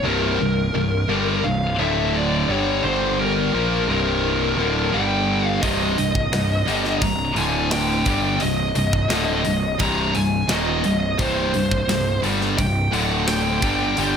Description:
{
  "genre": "heavy metal",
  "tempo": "86 BPM",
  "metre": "4/4",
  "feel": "straight",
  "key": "C minor",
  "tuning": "A4 = 441 Hz",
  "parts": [
    { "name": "high-gain lead guitar", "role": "melody", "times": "0.0-14.2 s", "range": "Bb4 to Bb5", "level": "-24 LUFS", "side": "left 1 dB", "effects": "distortion" },
    { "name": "heavy high-gain guitar", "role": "riff", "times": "0.0-14.2 s", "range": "C2 to Bb3", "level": "-24 LUFS", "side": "right 9 dB", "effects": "distortion" },
    { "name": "high-gain distorted guitar", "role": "riff", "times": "0.0-14.2 s", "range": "C2 to Bb3", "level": "-24 LUFS", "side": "left 7 dB", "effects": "distortion" },
    { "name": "fuzz picked electric bass", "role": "bass", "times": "0.0-14.2 s", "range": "C1 to Bb1", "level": "-26 LUFS", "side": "equal", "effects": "overdrive" },
    { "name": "tight metal drum kit", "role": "drums", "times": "5.6-14.1 s", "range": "hi-hat, kick drum, snare drum", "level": "-27 LUFS", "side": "equal", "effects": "none" }
  ],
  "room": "little or no reverb",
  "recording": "none",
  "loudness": "-18 LUFS",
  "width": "side -7 dB against mid",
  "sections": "0.0-14.2 A section",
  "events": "none",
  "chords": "0.0 C5; 1.8 D5; 2.5 G5; 3.5 C5; 4.9 G5; 5.6 Cm; 7.4 D5; 8.1 Cm; 12.9 D5; 13.6 G5"
}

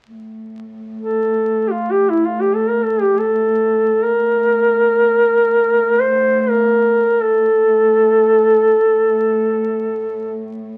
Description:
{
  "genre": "caucasian folk",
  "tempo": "free time",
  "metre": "none",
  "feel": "none",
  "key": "A phrygian",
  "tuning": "A4 = 440 Hz",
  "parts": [
    { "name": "dark studio cello section", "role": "drone", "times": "0.1-10.8 s", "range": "A2", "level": "-28 LUFS", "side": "equal", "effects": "none" },
    { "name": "mellow duduk", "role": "melody", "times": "1.0-10.4 s", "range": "E4 to C5", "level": "-16 LUFS", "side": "equal", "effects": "none" }
  ],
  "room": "moderate studio reverb, RT60 0.8 s",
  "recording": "very old 78 rpm record, vinyl crackle",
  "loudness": "-15 LUFS",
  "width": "mono",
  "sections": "0.1-10.8 A section",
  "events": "none",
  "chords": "none"
}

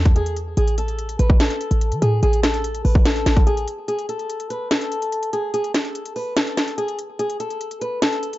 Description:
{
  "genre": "hip hop, trap",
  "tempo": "145 BPM",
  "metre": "4/4",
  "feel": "half-time",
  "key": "unclear",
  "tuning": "A4 = 439 Hz",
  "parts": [
    { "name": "fingerpicked old ladder-braced acoustic guitar", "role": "melody", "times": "0.0-8.4 s", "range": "G#4 to B4", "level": "-24 LUFS", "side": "left 1 dB", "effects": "low-pass filter, ping-pong delay" },
    { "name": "short 808-style bass", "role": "bass", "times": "0.0-3.7 s", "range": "A1 to E3", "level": "-20 LUFS", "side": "equal", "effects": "none" },
    { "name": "trap drum kit", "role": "drums", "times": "0.1-8.4 s", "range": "hi-hat, kick drum, snare drum", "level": "-19 LUFS", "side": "equal", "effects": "none" }
  ],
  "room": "little or no reverb",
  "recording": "dark, warm production, nothing above 7.7 kHz",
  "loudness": "-19 LUFS",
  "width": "side -16 dB against mid",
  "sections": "0.0-3.9 A section; 3.9-8.4 B section",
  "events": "break 3.9-8.4",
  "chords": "0.0 C#m (rootless); 0.6 A5; 3.9 N.C."
}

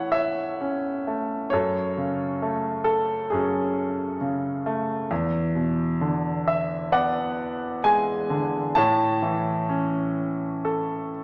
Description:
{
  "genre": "classical, lyrical solo piano",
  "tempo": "66 BPM",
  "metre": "4/4",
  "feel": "rubato",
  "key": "A major",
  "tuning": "A4 = 440 Hz",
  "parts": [
    { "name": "clear concert grand piano", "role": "solo", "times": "0.0-11.2 s", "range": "E2 to A5", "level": "-25 LUFS", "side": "equal", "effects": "none" }
  ],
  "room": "wet concert hall reverb, RT60 1.8 s",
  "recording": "none",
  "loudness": "-25 LUFS",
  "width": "mono",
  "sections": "0.0-11.2 A section",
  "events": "none",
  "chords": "0.0 A; 1.5 F#madd9; 5.1 E7; 8.8 A"
}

